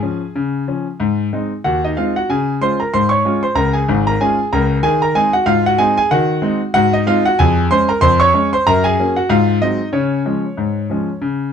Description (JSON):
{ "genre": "ragtime piano", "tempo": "94 BPM", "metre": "2/4", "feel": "swing 56% on 16ths", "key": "Db major", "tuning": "A4 = 440 Hz", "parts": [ { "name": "clear concert grand piano", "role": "solo", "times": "0.0-11.5 s", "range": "Ab1 to Db6", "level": "-13 LUFS", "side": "equal", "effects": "none" } ], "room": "light reverb", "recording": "close, detailed microphones", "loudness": "-13 LUFS", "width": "side -7 dB against mid", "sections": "0.0-11.5 A section", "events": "none", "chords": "0.0 Db; 1.0 Ab; 2.3 Db; 4.8 Ab7; 7.4 Db/F; 8.7 Gb; 9.3 Ab7; 9.9 Db" }